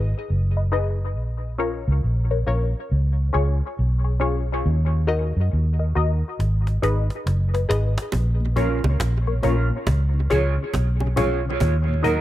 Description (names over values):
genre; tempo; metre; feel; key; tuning
dub reggae; 69 BPM; 4/4; swing 63% on 16ths; Bb phrygian; A4 = 439 Hz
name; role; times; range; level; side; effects
filtered dub chord stab; stabs; 0.0-12.2 s; Db4 to Eb5; -27 LUFS; left 3 dB; phaser, tape echo
vintage muted fingered electric bass; bass; 0.0-12.2 s; Gb1 to Gb2; -20 LUFS; equal; none
cajon; drums; 6.4-12.2 s; none; -29 LUFS; equal; none
bongos; percussion; 8.1-11.9 s; none; -34 LUFS; right 6 dB; tape echo
mellow tonewheel organ; accompaniment; 8.4-12.2 s; Eb2 to Eb4; -30 LUFS; left 2 dB; chorus vibrato, slow rotary speaker
mellow electric guitar; accompaniment; 8.6-12.2 s; Db4 to Db5; -27 LUFS; right 5 dB; lush chorus, tape echo
room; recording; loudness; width
studio reverb; echo-heavy mix; -20 LUFS; side -14 dB against mid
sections
0.0-8.1 A section; 8.1-12.2 B section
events
break 0.0-8.1; drum fill 6.4-8.1; part muted 11.6-12.2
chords
0.0 Abm; 1.2 Bbm; 2.9 Db; 4.6 Ebm; 6.4 Abm; 8.1 Bbm; 9.9 Db; 11.6 Ebm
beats
0.30 | 1.17 2.04 2.91 3.78 | 4.65 5.52 6.39 7.26 | 8.13 9.00 9.87 10.74 | 11.61